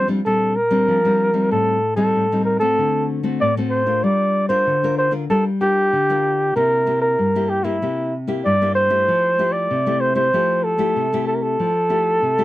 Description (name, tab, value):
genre	samba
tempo	95 BPM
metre	4/4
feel	straight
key	F major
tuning	A4 = 439 Hz
part	mellow flugelhorn	melody	0.0-12.4 s	E4 to D5	-18 LUFS	equal	none
part	nylon-string guitar	accompaniment	0.0-12.4 s	G2 to Bb4	-21 LUFS	left 2 dB	none
room	light reverb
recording	dry, close 1970s-style studio recording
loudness	-16 LUFS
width	side -16 dB against mid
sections	0.0-12.4 A section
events	none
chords	0.0 Bb69; 1.5 Am7b5; 2.8 D7; 4.0 Gm7; 6.6 C7; 9.1 Fmaj9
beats	0.25 0.88 | 1.51 2.15 2.78 3.41 | 4.04 4.67 5.30 5.93 | 6.56 7.19 7.82 8.45 | 9.07 9.70 10.33 10.96 | 11.59 12.22